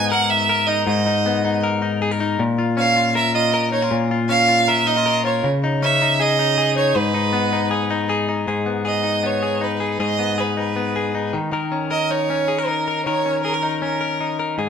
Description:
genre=indie pop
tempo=158 BPM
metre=4/4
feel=straight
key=G# minor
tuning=A4 = 440 Hz
part: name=rich violin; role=melody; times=0.0-14.4 s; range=A#4 to F#5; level=-20 LUFS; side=right 4 dB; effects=none
part: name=direct-recorded clean electric guitar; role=arpeggios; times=0.0-14.7 s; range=G#2 to A#4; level=-20 LUFS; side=left 3 dB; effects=none
room=wet stone room reverb, RT60 1.1 s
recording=band playing live in one room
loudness=-17 LUFS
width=side -7 dB against mid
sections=0.0-8.5 A section; 8.5-14.7 B section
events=none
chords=0.0 G#madd9; 2.4 A#m; 5.4 C#madd9; 7.0 G#m; 11.3 D#5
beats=0.11 0.49 | 0.87 1.25 1.63 2.01 | 2.39 2.77 3.15 3.54 | 3.92 4.29 4.68 5.06 | 5.44 5.82 6.20 6.58 | 6.96 7.34 7.72 8.10 | 8.48 8.86 9.24 9.62 | 10.01 10.39 10.77 11.15 | 11.53 11.91 12.30 12.68 | 13.06 13.44 13.82 14.20 | 14.58

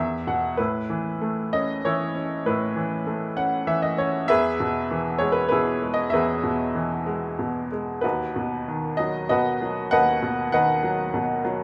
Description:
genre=classical, lyrical solo piano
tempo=97 BPM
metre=3/4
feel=rubato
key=A lydian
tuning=A4 = 440 Hz
part: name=bright upright piano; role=solo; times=0.0-11.6 s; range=D#2 to Gb5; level=-24 LUFS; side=equal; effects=none
room=moderate recital hall reverb, RT60 1.5 s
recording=none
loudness=-24 LUFS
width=mono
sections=0.6-11.6 A section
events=upright piano fill 0.0-0.6, 3.1-4.3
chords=0.0 E5; 0.6 Aadd9; 4.3 E; 8.0 B/D#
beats=| 0.58 1.22 1.85 | 2.46 3.07 3.68 | 4.29 4.91 5.52 | 6.13 6.75 7.39 | 8.04 8.67 9.30 | 9.92 10.53 11.14

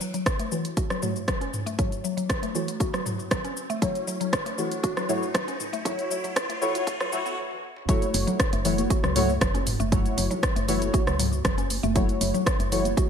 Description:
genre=afro house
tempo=118 BPM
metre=4/4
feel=straight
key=F# minor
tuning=A4 = 439 Hz
part: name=mallet-like synth pluck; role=arpeggios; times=0.0-13.0 s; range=E3 to F#4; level=-31 LUFS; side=left 1 dB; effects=chorus, phaser, sidechain pumping, tape echo
part: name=deep mellow chord stab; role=stabs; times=0.0-13.1 s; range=A3 to C#5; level=-29 LUFS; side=left 1 dB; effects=ensemble chorus, vintage 12-bit sampler grit, sidechain pumping, tape echo
part: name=house drum kit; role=drums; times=0.0-13.1 s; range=hi-hat, rim click, shaker, toms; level=-29 LUFS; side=equal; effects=overdrive
part: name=riser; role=sound effects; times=0.0-7.4 s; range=none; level=-40 LUFS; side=equal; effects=none
part: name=electronic kick drum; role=drums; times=0.3-13.1 s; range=none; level=-26 LUFS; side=equal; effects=overdrive
part: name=congas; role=percussion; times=7.9-13.1 s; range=none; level=-34 LUFS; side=equal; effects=none
part: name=woody FM bass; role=bass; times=8.1-12.9 s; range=F#1 to C#2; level=-28 LUFS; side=equal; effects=sidechain pumping
room=light reverb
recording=high-pass filter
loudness=-23 LUFS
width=side -7 dB against mid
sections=0.0-7.9 A section; 7.9-13.1 B section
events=build-up 0.0-7.9; riser 0.0-7.4; filter sweep on synth stab 0.0-7.9; filter sweep 0.0-7.9; drum fill 7.4-7.9; stop 7.4-7.9; drop 7.9-13.1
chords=0.0 F#m7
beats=0.26 0.77 1.28 | 1.79 2.29 2.80 3.31 | 3.82 4.33 4.84 5.35 | 5.86 6.36 6.87 7.38 | 7.89 8.40 8.91 9.41 | 9.92 10.43 10.94 11.45 | 11.96 12.46 12.97

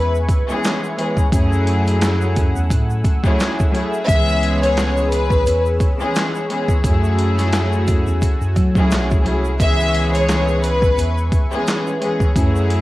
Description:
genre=hip hop, boom-bap hip-hop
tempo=87 BPM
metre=4/4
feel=swing 57% on 16ths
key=unclear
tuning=A4 = 438 Hz
part: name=warm studio violin section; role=melody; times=0.0-11.1 s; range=B4 to E5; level=-20 LUFS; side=left 1 dB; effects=cassette tape, tape echo
part: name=rich studio string section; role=accompaniment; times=0.0-12.8 s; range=E3 to G#4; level=-21 LUFS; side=left 1 dB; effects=cassette tape
part: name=warm analog pad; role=sustained chords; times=0.0-12.8 s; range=A3 to E6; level=-28 LUFS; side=equal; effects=chorus, cassette tape
part: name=mellow tine electric piano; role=bass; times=0.0-12.8 s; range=B1 to F#3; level=-19 LUFS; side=equal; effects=medium stereo tremolo
part: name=egg shaker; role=percussion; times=0.1-12.7 s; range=none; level=-41 LUFS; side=right 4 dB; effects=none
part: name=boom bap sampler-style drum kit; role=drums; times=0.3-12.8 s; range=handclaps, hi-hat, kick drum, snare drum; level=-18 LUFS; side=equal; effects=cassette tape
room=light reverb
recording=home recording on cassette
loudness=-15 LUFS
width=side -17 dB against mid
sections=0.0-12.8 A section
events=none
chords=0.0 C#m7; 1.3 F#m9; 4.1 C#m7; 6.8 F#m9; 9.6 C#m7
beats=0.64 | 1.32 2.01 2.70 3.39 | 4.08 4.77 5.46 6.15 | 6.84 7.53 8.22 8.91 | 9.60 10.29 10.98 11.67 | 12.36

